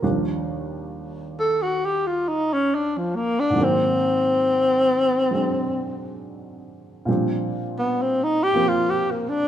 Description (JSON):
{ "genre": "jazz ballad", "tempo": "68 BPM", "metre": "4/4", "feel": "swing 68% on 8ths", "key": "unclear", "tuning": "A4 = 441 Hz", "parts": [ { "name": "dark baby grand piano", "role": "accompaniment", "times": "0.0-9.5 s", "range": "Eb2 to Bb4", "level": "-26 LUFS", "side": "right 2 dB", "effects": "none" }, { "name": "breathy tenor saxophone", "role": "melody", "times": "1.4-9.5 s", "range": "F3 to A4", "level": "-20 LUFS", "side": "left 1 dB", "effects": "none" } ], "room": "moderate large studio reverb, RT60 1.4 s", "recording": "minimal, uncompressed stereo recording", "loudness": "-19 LUFS", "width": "side -10 dB against mid", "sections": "0.0-9.5 A section", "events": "tenor saxophone solo 0.0-9.5", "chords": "0.0 Ebmaj9; 3.6 Ab9; 7.1 Bb69", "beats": "| 0.02 0.91 1.79 2.67 | 3.56 4.43 5.32 6.20 | 7.08 7.96 8.83" }